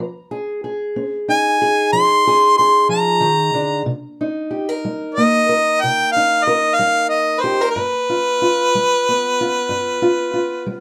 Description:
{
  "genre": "acoustic country blues, solo or duo",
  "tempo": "62 BPM (dotted quarters)",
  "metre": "12/8",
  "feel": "straight",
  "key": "C minor",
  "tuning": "A4 = 441 Hz",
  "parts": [
    { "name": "fingerpicked steel-string acoustic guitar", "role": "accompaniment", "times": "0.0-10.8 s", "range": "G2 to Bb4", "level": "-23 LUFS", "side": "equal", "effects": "none" },
    { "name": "warm harmonica", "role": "melody", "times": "1.3-10.8 s", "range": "B4 to C6", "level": "-17 LUFS", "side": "equal", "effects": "plate reverb" }
  ],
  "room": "light reverb",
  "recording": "none",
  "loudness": "-17 LUFS",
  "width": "mono",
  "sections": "0.0-10.8 A section",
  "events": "none",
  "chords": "0.0 Fm7; 3.9 Cm7; 7.8 G7"
}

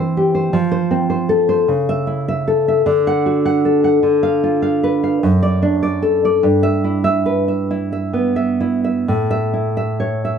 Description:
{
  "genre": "romantic piece for solo classical guitar",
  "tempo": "42-53 BPM (dotted quarters)",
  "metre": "6/8",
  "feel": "rubato",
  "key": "D major",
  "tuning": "A4 = 439 Hz",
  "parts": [
    { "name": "nylon-string guitar", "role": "solo", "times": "0.0-10.4 s", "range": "F#2 to F#5", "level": "-14 LUFS", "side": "equal", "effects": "none" }
  ],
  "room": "moderate small room ambience, RT60 0.5 s",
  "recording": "dark, warm production",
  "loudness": "-14 LUFS",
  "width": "side -7 dB against mid",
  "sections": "0.0-10.4 A section",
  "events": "none",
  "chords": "0.0 C/E; 0.5 F; 1.7 A/C#; 2.9 D; 4.0 Dm6; 5.2 D/F#; 6.4 Em/G; 9.1 A"
}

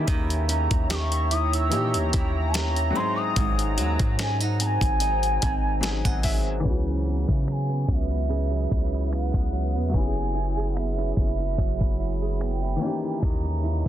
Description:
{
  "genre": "contemporary R&B",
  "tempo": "73 BPM",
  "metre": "4/4",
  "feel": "swing 54% on 16ths",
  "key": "C# dorian",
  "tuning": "A4 = 439 Hz",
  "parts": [
    { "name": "felt-muted upright piano", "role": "accompaniment", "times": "0.0-13.9 s", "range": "D#3 to G#5", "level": "-33 LUFS", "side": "left 4 dB", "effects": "none" },
    { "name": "deep dark ambient pad", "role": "sustained chords", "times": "0.0-13.9 s", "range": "G4 to D#6", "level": "-34 LUFS", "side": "equal", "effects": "chorus, built-in reverb, sidechain pumping" },
    { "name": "flamenco guitar", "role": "arpeggios", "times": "0.0-13.9 s", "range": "G#2 to G#4", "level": "-32 LUFS", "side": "right 7 dB", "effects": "digital delay" },
    { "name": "long sustained 808-style bass", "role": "bass", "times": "0.0-13.9 s", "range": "F#1 to C#3", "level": "-26 LUFS", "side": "equal", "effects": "none" },
    { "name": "dusty soul sampler-style drum kit", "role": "drums", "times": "0.1-13.9 s", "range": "finger snaps, hi-hat, kick drum, snare drum", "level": "-25 LUFS", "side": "equal", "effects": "none" },
    { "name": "mellow bansuri", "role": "melody", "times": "0.5-13.9 s", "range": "E5 to E6", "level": "-30 LUFS", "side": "right 1 dB", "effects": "digital delay" }
  ],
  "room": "little or no reverb",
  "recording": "dense, heavily limited modern master, low-pass filter",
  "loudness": "-22 LUFS",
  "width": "side -11 dB against mid",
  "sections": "0.0-6.7 A section; 6.7-13.9 B section",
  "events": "felt piano fill 5.4-6.7; filter sweep 6.7-13.9",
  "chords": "0.0 D#7b9; 3.0 G#7; 6.7 C#m11; 9.9 F#9sus4; 12.8 D#7b9"
}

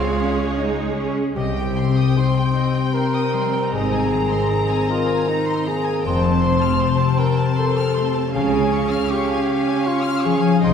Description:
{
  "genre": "cinematic, emotional film score for orchestra",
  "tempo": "78 BPM",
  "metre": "3/4",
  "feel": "rubato",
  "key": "C phrygian",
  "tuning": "A4 = 440 Hz",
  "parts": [
    { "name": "rich studio violin section", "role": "melody", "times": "0.0-10.7 s", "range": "Db5 to Bb5", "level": "-31 LUFS", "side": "left 3 dB", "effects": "none" },
    { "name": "bright clarinet", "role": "second line", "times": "0.0-0.6 s", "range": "F4", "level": "-31 LUFS", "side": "equal", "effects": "none" },
    { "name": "rich studio violin section", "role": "second line", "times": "0.0-10.7 s", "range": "Eb5 to F6", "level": "-30 LUFS", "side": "left 2 dB", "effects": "none" },
    { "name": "rich studio viola section", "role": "accompaniment", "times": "0.0-10.7 s", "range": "Ab3 to Ab4", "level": "-25 LUFS", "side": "equal", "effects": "none" },
    { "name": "concert harp", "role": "arpeggios", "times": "0.0-10.7 s", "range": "F2 to A5", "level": "-21 LUFS", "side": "left 5 dB", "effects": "none" },
    { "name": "rich studio cello section", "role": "bass", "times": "0.0-10.7 s", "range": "C2 to Eb4", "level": "-27 LUFS", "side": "right 2 dB", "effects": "none" },
    { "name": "rich studio double bass section", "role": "bass", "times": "0.0-10.7 s", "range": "F1 to Db2", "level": "-28 LUFS", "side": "right 3 dB", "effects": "none" },
    { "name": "dark cor anglais", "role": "melody", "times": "1.4-10.7 s", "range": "Eb4 to C5", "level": "-23 LUFS", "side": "right 1 dB", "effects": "none" }
  ],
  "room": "wet scoring stage reverb, RT60 1.9 s",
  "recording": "heard from further back in the room",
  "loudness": "-17 LUFS",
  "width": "side -7 dB against mid",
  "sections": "0.0-1.4 A section; 1.4-10.7 B section",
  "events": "none",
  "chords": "0.0 Db; 1.4 Cm; 3.7 Abadd9; 6.1 Fadd9; 8.3 Db"
}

